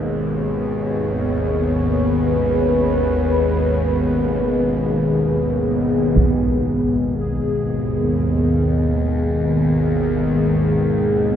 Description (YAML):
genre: dark ambient drone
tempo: free time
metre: none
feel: none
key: G# minor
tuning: A4 = 439 Hz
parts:
  - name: deep dark ambient pad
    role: sustained chords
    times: 0.0-11.4 s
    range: B3 to D#5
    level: -19 LUFS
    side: left 1 dB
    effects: chorus, built-in reverb
  - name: bowed-like drone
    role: drone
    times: 0.0-11.4 s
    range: G#1 to D#2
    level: -20 LUFS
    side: equal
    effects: built-in reverb, phaser
  - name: taiko ensemble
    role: percussion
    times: 6.2-6.4 s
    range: none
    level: -23 LUFS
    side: equal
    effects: low-pass filter on perc
  - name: bubbling stepped-filter texture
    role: texture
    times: 6.2-11.4 s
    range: G#4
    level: -34 LUFS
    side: right 1 dB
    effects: chorus, built-in reverb
room: wet cathedral reverb, RT60 6.3 s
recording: in a vast, echoing space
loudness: -16 LUFS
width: side -9 dB against mid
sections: 0.0-6.2 A section; 6.2-11.4 B section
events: none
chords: 0.0 G#madd9